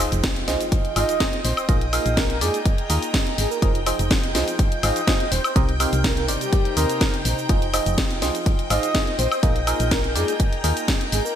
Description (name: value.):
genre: piano house.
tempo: 124 BPM.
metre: 4/4.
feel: straight.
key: F minor.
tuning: A4 = 441 Hz.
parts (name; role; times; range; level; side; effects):
string machine, violins; sustained chords; 0.0-11.4 s; G5 to G6; -33 LUFS; equal; ensemble chorus, sidechain pumping.
barking FM electric piano; riff; 0.0-11.3 s; C3 to F5; -27 LUFS; right 2 dB; chorus, phaser, tremolo, sidechain pumping, ping-pong delay.
solid FM bass; bass; 0.0-11.2 s; Eb1 to F2; -24 LUFS; equal; sidechain pumping.
house drum kit; drums; 0.0-11.3 s; cabasa, hi-hat, snare drum, woodblock; -25 LUFS; left 1 dB; gated reverb.
sub drop; sound effects; 0.0-1.7 s; none; -36 LUFS; equal; none.
airy breathy pad; texture; 0.1-11.4 s; Eb4 to Bb5; -33 LUFS; right 1 dB; chorus, sidechain pumping.
electronic kick drum; drums; 0.2-11.0 s; none; -21 LUFS; equal; none.
breathy flute-like synth lead; melody; 1.0-11.3 s; G4 to Eb5; -27 LUFS; equal; wide subtle chorus, ping-pong delay.
room: light reverb, digital ambience.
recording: bright 1980s-style digital production.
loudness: -19 LUFS.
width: side -9 dB against mid.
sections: 0.0-11.4 A section.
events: impact 0.0-1.7.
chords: 0.0 Fm7; 1.4 Bb7sus4; 3.6 Fm7; 5.6 Cm7; 7.5 Fm7; 9.2 Bb7sus4.